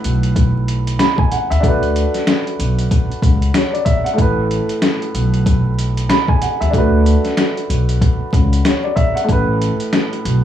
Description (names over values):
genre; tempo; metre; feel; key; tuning
hip hop, boom-bap hip-hop; 94 BPM; 4/4; swing 60% on 16ths; unclear; A4 = 440 Hz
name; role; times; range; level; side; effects
dark upright piano; accompaniment; 0.0-10.4 s; A2 to B5; -20 LUFS; equal; cassette tape, high-pass filter, low-pass filter
upright bass; bass; 0.0-10.4 s; A1 to D#2; -16 LUFS; equal; none
trip hop sampler-style drum kit; drums; 0.0-10.4 s; hi-hat, kick drum, snare drum; -17 LUFS; left 1 dB; overdrive
finger snaps; percussion; 1.0-10.1 s; none; -31 LUFS; right 12 dB; none
room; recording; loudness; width
light reverb; vinyl crackle, small room ambience; -13 LUFS; side -10 dB against mid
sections
0.0-10.4 A section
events
none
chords
0.0 Asus2; 1.6 D6; 4.2 Asus2; 6.7 D6; 9.3 Asus2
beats
0.35 0.99 | 1.63 2.27 2.91 3.54 | 4.18 4.82 5.46 6.10 | 6.74 7.38 8.01 8.65 | 9.29 9.93